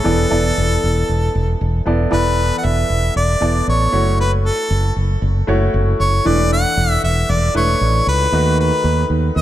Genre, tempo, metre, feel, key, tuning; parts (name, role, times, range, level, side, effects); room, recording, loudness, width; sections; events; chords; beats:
1980s-style pop; 116 BPM; 4/4; straight; A4 = 442 Hz
bright harmonica; melody; 0.0-9.4 s; A4 to F#5; -19 LUFS; equal; ping-pong delay
clear baby grand piano; accompaniment; 0.0-9.4 s; D#3 to D5; -21 LUFS; equal
fretless electric bass; bass; 0.1-9.4 s; E1 to D#2; -17 LUFS; equal; wide subtle chorus
light reverb, small room ambience; dark, warm production; -14 LUFS; side -13 dB against mid
0.0-2.1 A section; 2.1-9.4 B section
0.1 E7sus4; 3.9 F#m7; 6.3 E7sus4; 8.3 B7/D#
| 0.05 0.57 1.09 1.60 | 2.12 2.64 3.16 3.67 | 4.19 4.71 5.22 5.74 | 6.26 6.78 7.29 7.81 | 8.33 8.85 9.36